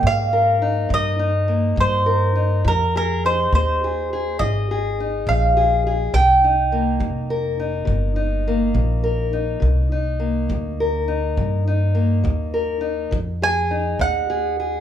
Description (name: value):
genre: acoustic country blues, solo or duo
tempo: 69 BPM (dotted quarters)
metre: 12/8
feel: straight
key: C minor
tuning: A4 = 436 Hz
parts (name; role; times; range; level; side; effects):
- mandolin; melody; 0.0-7.8, 13.4-14.8 s; Bb4 to Ab5; -19 LUFS; right 2 dB; none
- fingerpicked steel-string acoustic guitar; accompaniment; 0.0-14.8 s; C3 to Bb4; -24 LUFS; left 4 dB; none
- upright bass; bass; 0.0-14.8 s; F1 to Ab2; -22 LUFS; equal; none
- kick drum; drums; 0.0-14.1 s; none; -27 LUFS; equal; none
room: light reverb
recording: band playing live in one room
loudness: -17 LUFS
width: side -10 dB against mid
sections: 0.0-14.8 A section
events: none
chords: 0.0 Cm7; 2.7 Fm7; 6.1 Cm7; 13.1 Fm7